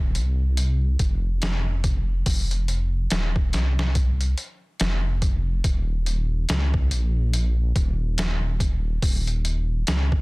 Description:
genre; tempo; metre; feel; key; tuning
trip hop; 71 BPM; 4/4; swing 59% on 16ths; unclear; A4 = 438 Hz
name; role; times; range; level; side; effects
dark detuned saw bass; bass; 0.0-10.2 s; Eb1 to Db2; -22 LUFS; equal; none
trip hop sampler-style drum kit; drums; 0.1-10.2 s; hi-hat, kick drum, snare drum; -24 LUFS; equal; none
room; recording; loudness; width
little or no reverb; dense, heavily limited modern master; -21 LUFS; side -25 dB against mid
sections
0.0-10.2 A section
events
none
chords
none

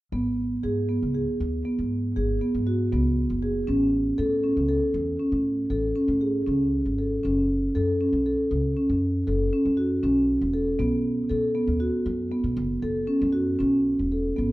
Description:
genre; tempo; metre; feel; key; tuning
contemporary instrumental, chamber music in an uneven meter; 236 BPM (eighths); 7/8; straight; F# dorian; A4 = 438 Hz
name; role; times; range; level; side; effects
marimba with soft mallets; arpeggios; 0.1-14.5 s; B3 to A4; -23 LUFS; equal; none
upright bass; bass; 0.1-14.5 s; E1 to B2; -29 LUFS; left 1 dB; none
room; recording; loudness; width
moderate recital hall reverb, RT60 1.3 s; dark, warm production; -22 LUFS; side -18 dB against mid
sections
0.1-14.4 A section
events
none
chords
0.1 G#m7; 3.7 Amaj7; 7.2 F#m; 10.8 B5; 12.6 F#m7

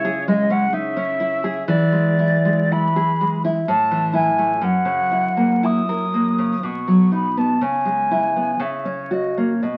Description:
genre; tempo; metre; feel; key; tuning
romantic duo for flute and classical guitar; 55-65 BPM; 3/4; rubato; unclear; A4 = 439 Hz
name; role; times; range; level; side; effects
mellow silver concert flute; melody; 0.0-9.8 s; C#5 to D#6; -23 LUFS; equal; none
nylon-string guitar; accompaniment; 0.0-9.8 s; F#2 to A#4; -22 LUFS; equal; none
room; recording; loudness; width
wet studio reverb, RT60 0.9 s; very old 78 rpm record, vinyl crackle; -19 LUFS; mono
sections
0.0-9.8 A section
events
none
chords
0.0 C#m; 1.7 E7; 3.7 A5; 4.6 F#7; 6.6 B; 7.6 C#m7; 8.6 F#/C#

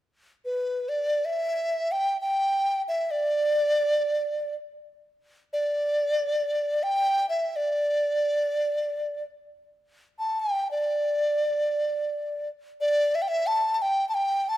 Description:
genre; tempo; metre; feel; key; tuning
chinese traditional; free time; none; none; D zhi mode; A4 = 441 Hz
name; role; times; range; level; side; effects
mellow hollow large dizi; solo; 0.5-14.6 s; B4 to A5; -24 LUFS; equal; none
room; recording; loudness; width
light reverb; none; -24 LUFS; side -14 dB against mid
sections
0.0-12.8 A section; 12.8-14.6 B section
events
none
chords
none

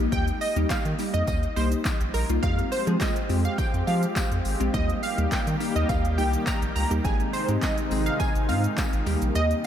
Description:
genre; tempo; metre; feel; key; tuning
dance-pop; 104 BPM; 4/4; straight; unclear; A4 = 441 Hz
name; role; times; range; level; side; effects
glassy wavetable pluck; accompaniment; 0.0-9.6 s; G3 to Ab4; -29 LUFS; left 2 dB; chorus, sidechain pumping
round analog bass; bass; 0.0-9.5 s; Ab1 to F3; -26 LUFS; equal; sidechain pumping
plucky unison lead; melody; 0.1-9.7 s; Bb4 to Bb5; -30 LUFS; right 2 dB; analog chorus, sidechain pumping, ping-pong delay
deep house drum kit; drums; 0.1-9.7 s; handclaps, hi-hat, kick drum, shaker, snare drum; -29 LUFS; equal; none
tambourine; percussion; 0.1-9.7 s; none; -46 LUFS; left 6 dB; none
sweeping resonant pad; sustained chords; 2.4-9.7 s; C3 to G4; -33 LUFS; left 1 dB; chorus, sidechain pumping
room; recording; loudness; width
moderate cathedral reverb, RT60 6.4 s; dreamy mix soaked in reverb; -22 LUFS; side -10 dB against mid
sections
0.0-9.7 A section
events
kick muted 9.4-9.7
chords
0.0 Eb; 2.4 Fmadd9; 4.7 Eb; 7.0 Ab; 9.1 Eb

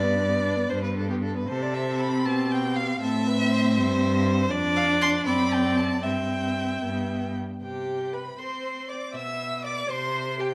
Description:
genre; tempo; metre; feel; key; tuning
quick classical-period movement for string quartet; 78 BPM (dotted quarters); 6/8; uneven beats, rubato; C major; A4 = 439 Hz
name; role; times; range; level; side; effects
warm violin; melody; 0.0-10.5 s; G4 to E6; -33 LUFS; equal; none
warm violin; second line; 0.0-10.5 s; G4 to E5; -33 LUFS; equal; none
warm viola; accompaniment; 0.0-10.5 s; B3 to E5; -30 LUFS; equal; none
rich cello; bass; 0.0-10.5 s; F2 to C4; -31 LUFS; equal; none
room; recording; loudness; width
wet stone room reverb, RT60 1.2 s; none; -26 LUFS; mono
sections
0.0-7.6 A section; 7.6-10.5 B section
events
none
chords
0.0 G; 1.5 C5; 3.0 Am; 4.5 Dm/F; 5.3 D7/F#; 6.0 C/G; 6.8 G; 7.6 C5; 9.1 Bmadd11; 9.9 C5

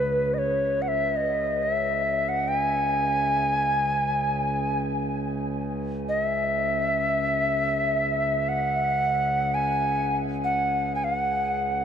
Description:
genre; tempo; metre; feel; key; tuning
world meditative, free-time meditation music; free time; none; none; C# minor; A4 = 441 Hz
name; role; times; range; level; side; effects
bright reedy Native American-style cedar flute; melody; 0.0-11.8 s; B4 to G#5; -24 LUFS; equal; tape echo
pedal harmonium; drone; 0.0-11.8 s; C#2 to C#3; -29 LUFS; right 1 dB; stereo widening
room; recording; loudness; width
moderate huge ambient reverb, RT60 7.3 s; dark, warm production; -23 LUFS; side -8 dB against mid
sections
0.0-11.8 A section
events
none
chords
none

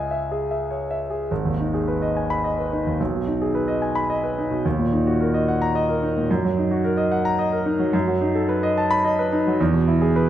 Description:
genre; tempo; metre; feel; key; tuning
classical, virtuoso piano study; 108 BPM; 3/4; rubato; G# minor; A4 = 440 Hz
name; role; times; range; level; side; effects
clear concert grand piano; solo; 0.0-10.3 s; G#1 to B5; -19 LUFS; equal; none
room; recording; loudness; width
wet recital hall reverb, RT60 1.5 s; none; -19 LUFS; side -11 dB against mid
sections
0.0-1.3 A section; 1.3-10.3 B section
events
none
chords
0.0 C#m; 1.3 G#m; 3.0 G#m/B; 4.6 D#m; 6.3 D#m/F#; 7.9 B7/F#; 9.6 E

